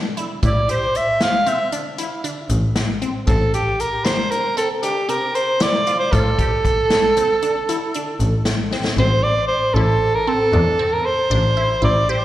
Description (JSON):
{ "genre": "progressive instrumental, band music in an uneven meter", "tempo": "232 BPM (eighths)", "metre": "11/8", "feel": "straight", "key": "A phrygian", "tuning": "A4 = 441 Hz", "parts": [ { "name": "resonant blip pluck", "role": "arpeggios", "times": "0.0-12.2 s", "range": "C4 to G4", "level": "-27 LUFS", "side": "left 1 dB", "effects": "phaser, slapback echo" }, { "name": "swinging big-band drum kit", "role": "drums", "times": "0.2-9.0 s", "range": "hi-hat, kick drum, snare drum", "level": "-22 LUFS", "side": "left 1 dB", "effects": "none" }, { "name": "clear double bass", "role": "bass", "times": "0.4-11.9 s", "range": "A1 to A2", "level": "-20 LUFS", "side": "equal", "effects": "none" }, { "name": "breathy soprano saxophone", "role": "melody", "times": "0.5-12.2 s", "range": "G4 to F5", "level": "-18 LUFS", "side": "right 1 dB", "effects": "slapback echo, digital delay" } ], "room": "moderate club reverb, RT60 0.8 s", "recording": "live gig heard through the venue's PA, recital hall reverb", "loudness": "-16 LUFS", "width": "side -14 dB against mid", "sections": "0.0-9.0 A section; 9.0-12.2 B section", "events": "drum fill 8.7", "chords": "0.0 Am7 (rootless); 3.3 Fadd9/A; 9.0 Am", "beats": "0.17 | 0.42 0.68 0.94 1.20 1.46 1.72 1.98 2.24 2.50 2.76 3.02 | 3.27 3.53 3.79 4.05 4.31 4.57 4.83 5.09 5.35 5.61 5.87 | 6.13 6.38 6.64 6.90 7.16 7.42 7.68 7.94 8.20 8.46 8.72 | 8.98 9.24 9.50 9.76 10.01 10.27 10.53 10.79 11.05 11.31 11.57 | 11.83 12.09" }